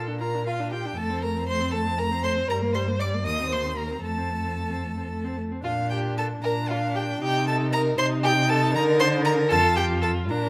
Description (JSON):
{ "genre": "quick classical-period movement for string quartet", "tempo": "77 BPM (dotted quarters)", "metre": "6/8", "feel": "rubato", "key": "unclear", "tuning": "A4 = 440 Hz", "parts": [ { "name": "warm violin", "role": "second line", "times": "0.0-10.5 s", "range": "F4 to Eb5", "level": "-30 LUFS", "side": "equal", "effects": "none" }, { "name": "warm viola", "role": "accompaniment", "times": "0.0-10.5 s", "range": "G3 to F4", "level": "-33 LUFS", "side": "equal", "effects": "none" }, { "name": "warm cello", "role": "bass", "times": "0.0-10.5 s", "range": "Eb2 to D3", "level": "-30 LUFS", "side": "equal", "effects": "none" }, { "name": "rich violin", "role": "melody", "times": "0.2-10.5 s", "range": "F5 to Eb6", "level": "-30 LUFS", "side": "equal", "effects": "none" } ], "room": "moderate recital hall reverb, RT60 1.7 s", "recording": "close, detailed microphones", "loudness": "-25 LUFS", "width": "mono", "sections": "0.0-10.5 A section", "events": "none", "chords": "0.0 Bb; 1.0 F; 2.5 Gm; 3.3 Cm7/Eb; 4.0 F; 5.6 Bb; 7.2 Cm; 8.7 Cm9/D; 9.5 Fadd9" }